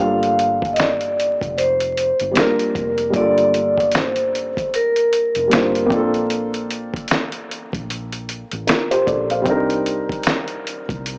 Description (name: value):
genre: lo-fi hip hop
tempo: 76 BPM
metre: 4/4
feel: swing 61% on 16ths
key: G minor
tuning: A4 = 440 Hz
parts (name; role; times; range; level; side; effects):
- vibraphone with medium mallets; melody; 0.0-5.9 s; Bb4 to F5; -21 LUFS; equal; none
- felt-muted upright piano; accompaniment; 0.0-11.2 s; G3 to F5; -24 LUFS; equal; cassette tape
- vintage muted fingered electric bass; bass; 0.0-11.2 s; F1 to C2; -36 LUFS; equal; none
- dusty soul sampler-style drum kit; drums; 0.2-11.2 s; finger snaps, hi-hat, kick drum, snare drum; -24 LUFS; equal; overdrive
room: light reverb, small room ambience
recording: dry, gritty hardware recording, transformer saturation, vinyl crackle, small speaker sound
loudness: -19 LUFS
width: mono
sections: 0.0-11.2 A section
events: none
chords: 0.0 Gm7; 5.9 Bbmaj7; 9.5 Cm9